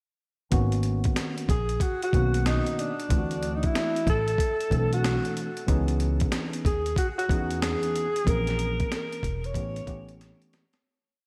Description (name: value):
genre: hip hop, jazz-hop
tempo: 93 BPM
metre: 4/4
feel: swing 63% on 16ths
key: G# minor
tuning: A4 = 439 Hz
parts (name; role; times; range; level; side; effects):
- tine electric piano; accompaniment; 0.5-10.6 s; D#3 to A4; -34 LUFS; equal; none
- upright bass; bass; 0.5-10.3 s; E1 to E2; -31 LUFS; equal; none
- boom bap sampler-style drum kit; drums; 0.5-10.8 s; hi-hat, kick drum, snare drum; -31 LUFS; equal; none
- breathy alto saxophone; melody; 1.5-10.2 s; D4 to C#5; -32 LUFS; equal; diffuse ambient delay
room: moderate lush hall reverb, RT60 1.9 s, digital ambience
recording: dreamy mix soaked in reverb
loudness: -26 LUFS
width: mono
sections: 0.5-10.8 head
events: fade-out 8.3-10.8; drum fill 10.2-10.8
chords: 0.5 G#m11; 3.1 D9; 5.7 C#m9; 8.3 A#m7b5; 9.6 A9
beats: | 0.52 1.17 1.81 2.46 | 3.10 3.75 4.39 5.04 | 5.68 6.33 6.97 7.62 | 8.27 8.91 9.55 10.20